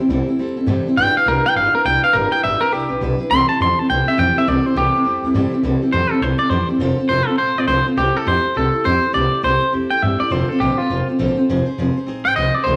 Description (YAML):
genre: rockabilly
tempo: 206 BPM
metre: 4/4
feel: swing 62% on 8ths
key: C mixolydian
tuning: A4 = 442 Hz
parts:
  - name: picked steel-string acoustic guitar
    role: accompaniment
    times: 0.0-12.8 s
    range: C3 to C5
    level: -22 LUFS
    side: equal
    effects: none
  - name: upright bass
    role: bass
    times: 0.1-12.8 s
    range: F1 to G2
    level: -25 LUFS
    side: equal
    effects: none
  - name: twangy electric guitar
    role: melody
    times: 1.0-12.8 s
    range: F4 to C6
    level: -19 LUFS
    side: equal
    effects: spring reverb
room: wet studio ambience, RT60 0.5 s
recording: vinyl crackle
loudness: -17 LUFS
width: mono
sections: 0.0-5.6 A section; 5.6-12.8 B section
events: clean electric guitar solo 0.0-5.6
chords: 0.0 C6; 1.0 G6; 3.3 C6; 6.8 F6; 8.0 C6; 10.3 F6; 11.5 Fm7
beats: 0.10 0.40 0.69 | 0.98 1.27 1.56 1.85 | 2.14 2.43 2.73 3.02 | 3.31 3.60 3.89 4.18 | 4.47 4.76 5.05 5.34 | 5.64 5.93 6.22 6.51 | 6.80 7.10 7.39 7.68 | 7.97 8.27 8.56 8.85 | 9.14 9.44 9.73 10.02 | 10.31 10.61 10.90 11.19 | 11.48 11.78 12.07 12.36 | 12.65